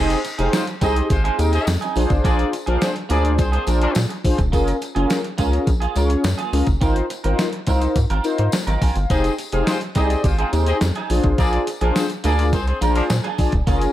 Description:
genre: early-eighties boogie funk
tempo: 105 BPM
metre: 4/4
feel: straight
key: unclear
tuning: A4 = 445 Hz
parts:
  - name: clear horn section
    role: second line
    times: 0.0-3.9, 9.1-13.0 s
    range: F3 to F5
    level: -26 LUFS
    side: left 3 dB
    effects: none
  - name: mellow synth brass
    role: accompaniment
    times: 0.0-13.9 s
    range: Db4 to Ab5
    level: -23 LUFS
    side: left 2 dB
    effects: chorus
  - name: clean electric guitar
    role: riff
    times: 0.0-13.9 s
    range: Bb3 to C5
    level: -28 LUFS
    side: right 6 dB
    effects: lush chorus
  - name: rubbery square bass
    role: bass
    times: 0.0-13.9 s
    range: Eb1 to Bb2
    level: -20 LUFS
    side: equal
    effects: none
  - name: crisp 8-bit digital drum machine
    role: drums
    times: 0.1-13.9 s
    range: hi-hat, kick drum, snare drum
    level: -22 LUFS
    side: equal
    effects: gated reverb
  - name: tambourine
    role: percussion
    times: 0.1-13.9 s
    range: none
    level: -36 LUFS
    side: left 6 dB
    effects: none
room: digital ambience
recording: none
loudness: -17 LUFS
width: side -13 dB against mid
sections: 0.0-13.9 A section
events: none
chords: 0.0 Fm7; 2.0 Bb7; 4.5 Gbmaj9; 6.8 Ab69; 9.1 Fm7; 11.1 Bb7

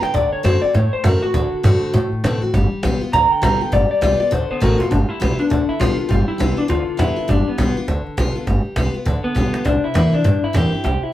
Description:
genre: rockabilly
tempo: 202 BPM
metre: 4/4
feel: swing 61% on 8ths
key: G mixolydian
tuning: A4 = 438 Hz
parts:
  - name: electric guitar through a small old amp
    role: melody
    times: 0.0-11.1 s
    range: B3 to Bb5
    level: -20 LUFS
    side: left 1 dB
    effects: spring reverb
  - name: picked steel-string acoustic guitar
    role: accompaniment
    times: 0.0-11.1 s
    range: G2 to F#4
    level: -22 LUFS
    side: left 1 dB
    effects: none
  - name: upright bass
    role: bass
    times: 0.0-11.1 s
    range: G1 to B2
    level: -19 LUFS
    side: equal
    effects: none
  - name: cajon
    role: drums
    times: 0.0-11.1 s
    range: none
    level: -23 LUFS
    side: equal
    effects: none
room: moderate studio reverb, RT60 0.5 s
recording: band playing live in one room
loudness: -15 LUFS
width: side -13 dB against mid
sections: 0.0-4.9 A section; 4.9-11.1 B section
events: clean electric guitar solo 0.0-4.9; drum fill 4.6, 9.4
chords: 0.1 D7; 2.5 G7; 4.3 D7; 4.9 G7; 9.7 C7

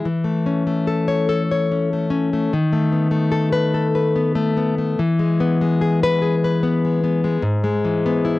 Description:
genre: romantic piece for solo classical guitar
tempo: 49 BPM (dotted quarters)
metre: 6/8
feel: rubato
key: E major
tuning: A4 = 442 Hz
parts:
  - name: nylon-string guitar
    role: solo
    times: 0.0-8.4 s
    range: G#2 to C#5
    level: -17 LUFS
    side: left 2 dB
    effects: none
room: light reverb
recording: home recording on cassette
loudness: -17 LUFS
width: side -17 dB against mid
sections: 0.0-8.4 A section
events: none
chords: 0.1 A/E; 2.5 B7/D#; 5.0 E; 7.4 E/G#

